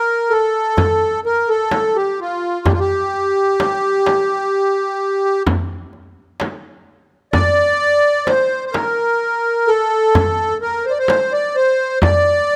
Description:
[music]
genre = Arabic maqam ensemble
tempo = 128 BPM (eighths)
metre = 10/8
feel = straight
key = D maqam bayati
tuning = A4 = 440 Hz
[part]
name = accordion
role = melody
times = 0.0-12.6 s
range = F4 to D5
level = -17 LUFS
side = equal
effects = light tremolo tuning
[part]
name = darbuka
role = percussion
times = 0.3-12.4 s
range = none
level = -22 LUFS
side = equal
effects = none
[part]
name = frame drum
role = percussion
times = 0.8-12.2 s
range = none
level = -25 LUFS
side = equal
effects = none
[sound]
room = light reverb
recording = close, detailed microphones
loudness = -17 LUFS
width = mono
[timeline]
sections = 0.0-12.6 A section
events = none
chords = none

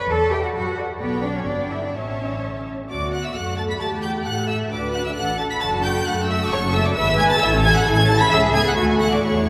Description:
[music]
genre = quick classical-period movement for string orchestra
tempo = 132 BPM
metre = 2/4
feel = straight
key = D major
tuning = A4 = 436 Hz
[part]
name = rich studio violin section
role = melody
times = 0.0-9.5 s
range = G5 to B6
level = -27 LUFS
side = equal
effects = none
[part]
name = warm studio violin section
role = second line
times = 0.0-9.5 s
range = B4 to B5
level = -27 LUFS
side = equal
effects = none
[part]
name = warm studio viola section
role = accompaniment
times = 0.0-9.5 s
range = G#3 to E5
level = -28 LUFS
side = equal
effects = none
[part]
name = warm studio cello section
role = bass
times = 0.0-9.5 s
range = B3 to B4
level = -28 LUFS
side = equal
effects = none
[part]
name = dark studio double bass section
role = bass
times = 0.1-9.5 s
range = F#1 to A2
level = -27 LUFS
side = equal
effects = none
[sound]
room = wet cathedral reverb, RT60 4.5 s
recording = none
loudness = -21 LUFS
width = mono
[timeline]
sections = 0.0-2.9 A section; 2.9-9.5 B section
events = none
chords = 0.1 Em; 0.5 D/F#; 1.0 G/B; 1.9 A; 2.9 D; 3.8 A5/E; 4.7 D; 5.6 D/F#; 6.5 F#m; 7.0 E/G#; 7.4 A; 8.3 A/C#; 8.8 D

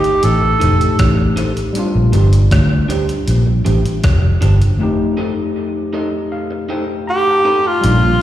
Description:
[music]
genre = lovers rock reggae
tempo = 79 BPM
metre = 4/4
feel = straight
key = unclear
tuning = A4 = 441 Hz
[part]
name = breathy tenor saxophone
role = melody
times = 0.0-1.0, 7.1-8.2 s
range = F4 to A4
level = -14 LUFS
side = right 1 dB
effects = tape echo, slapback echo
[part]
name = tine electric piano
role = accompaniment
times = 0.0-8.2 s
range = F2 to C6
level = -20 LUFS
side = left 3 dB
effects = overdrive, dub echo, slapback echo
[part]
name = clean 12-bit digital drum machine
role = drums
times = 0.0-8.0 s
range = hi-hat, kick drum, rim click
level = -20 LUFS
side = equal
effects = dub echo
[part]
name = vintage muted fingered electric bass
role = bass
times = 0.2-8.2 s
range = F1 to D2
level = -12 LUFS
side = equal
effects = none
[part]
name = electric guitar through a small old amp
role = stabs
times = 0.4-7.6 s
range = D4 to C5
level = -25 LUFS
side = right 3 dB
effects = wide subtle chorus, dub echo, slapback echo
[part]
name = mellow tonewheel organ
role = accompaniment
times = 8.0-8.1 s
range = Bb2 to F3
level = -23 LUFS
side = right 5 dB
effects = none
[sound]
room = light reverb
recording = live gig heard through the venue's PA, recital hall reverb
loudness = -12 LUFS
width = side -12 dB against mid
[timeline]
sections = 0.0-7.8 A section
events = break 4.8-7.8; tine electric piano fill 5.6-7.8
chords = 0.0 F7 (rootless); 1.8 Bb69; 4.8 F7

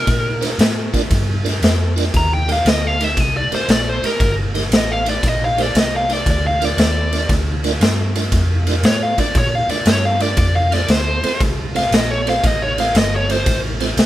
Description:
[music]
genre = electric blues shuffle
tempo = 116 BPM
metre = 4/4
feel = swing 67% on 8ths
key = Bb major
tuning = A4 = 440 Hz
[part]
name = biting lead guitar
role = melody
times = 0.0-13.6 s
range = Bb4 to Bb5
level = -20 LUFS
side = equal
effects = overdrive
[part]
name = vintage muted fingered electric bass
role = bass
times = 0.0-14.1 s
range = G1 to Bb2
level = -20 LUFS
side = equal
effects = none
[part]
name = raw garage drum kit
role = drums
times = 0.1-14.1 s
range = kick drum, ride cymbal, snare drum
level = -18 LUFS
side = equal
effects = none
[part]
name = tonewheel organ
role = accompaniment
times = 0.4-13.9 s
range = C4 to Eb5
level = -26 LUFS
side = right 5 dB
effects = slow rotary speaker, overdrive, chorus vibrato
[sound]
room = light reverb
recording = band playing live in one room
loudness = -14 LUFS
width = side -14 dB against mid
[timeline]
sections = 0.0-14.1 A section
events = lead electric guitar solo 0.0-14.1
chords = 0.0 Bb; 2.1 Eb; 6.3 Bb; 10.4 F

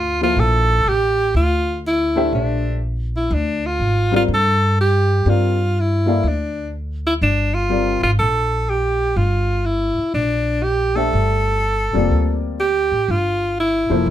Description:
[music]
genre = modal jazz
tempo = 123 BPM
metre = 4/4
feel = swing 66% on 8ths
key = G dorian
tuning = A4 = 441 Hz
[part]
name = clear alto saxophone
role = melody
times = 0.0-14.0 s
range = D4 to A4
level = -19 LUFS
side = right 1 dB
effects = none
[part]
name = upright bass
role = bass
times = 0.0-14.1 s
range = F1 to G2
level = -20 LUFS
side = equal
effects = none
[part]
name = warm baby grand piano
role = accompaniment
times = 0.2-8.0, 11.0-14.1 s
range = F3 to F5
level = -21 LUFS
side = left 4 dB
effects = none
[sound]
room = light reverb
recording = none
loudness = -16 LUFS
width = side -12 dB against mid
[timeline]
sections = 0.0-14.1 A section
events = none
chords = 0.0 Gm9

